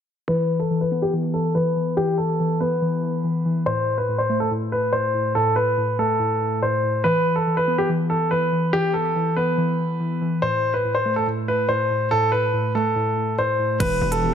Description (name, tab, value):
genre	hip hop, drill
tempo	142 BPM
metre	4/4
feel	half-time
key	E minor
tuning	A4 = 441 Hz
part	clear concert grand piano	melody	0.3-14.3 s	G4 to C5	-21 LUFS	equal	low-pass filter
part	warbly lo-fi synth keys	accompaniment	0.3-14.3 s	A2 to B3	-24 LUFS	equal	chorus, low-pass filter
part	granular cloud pad	sustained chords	14.1-14.3 s	E3 to G4	-31 LUFS	right 4 dB	built-in reverb
part	distorted 808-style bass	bass	13.8-14.3 s	E1	-25 LUFS	right 1 dB	distortion
part	drill drum kit	drums	13.8-14.2 s	crash cymbal, hi-hat, kick drum	-28 LUFS	right 1 dB	none
room	moderate scoring stage reverb, RT60 1.7 s, digital ambience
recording	none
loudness	-19 LUFS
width	side -8 dB against mid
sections	0.3-13.8 A section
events	filter sweep 0.3-13.8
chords	0.3 E5; 3.7 N.C.; 7.0 E5; 10.4 N.C.; 13.8 Em